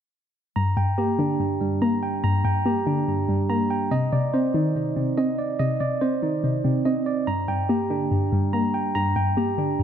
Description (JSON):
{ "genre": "hip hop", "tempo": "143 BPM", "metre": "4/4", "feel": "half-time", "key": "G minor", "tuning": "A4 = 442 Hz", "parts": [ { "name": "warbly dusty pluck", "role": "accompaniment", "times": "0.6-9.8 s", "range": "G2 to C4", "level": "-23 LUFS", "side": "left 2 dB", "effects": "chorus" }, { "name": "tine electric piano", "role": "arpeggios", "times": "0.6-9.8 s", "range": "G3 to Bb5", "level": "-24 LUFS", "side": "right 3 dB", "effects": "ping-pong delay" } ], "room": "light reverb, digital ambience", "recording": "dark, warm production", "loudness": "-21 LUFS", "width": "side -9 dB against mid", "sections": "0.6-9.8 A section", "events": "none", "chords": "0.6 Gm; 3.9 Cmadd9; 7.3 Gm", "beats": "| 0.56 0.98 1.40 1.82 | 2.24 2.66 3.08 3.50 | 3.92 4.34 4.75 5.17 | 5.59 6.01 6.43 6.85 | 7.27 7.69 8.11 8.53 | 8.95 9.37 9.79" }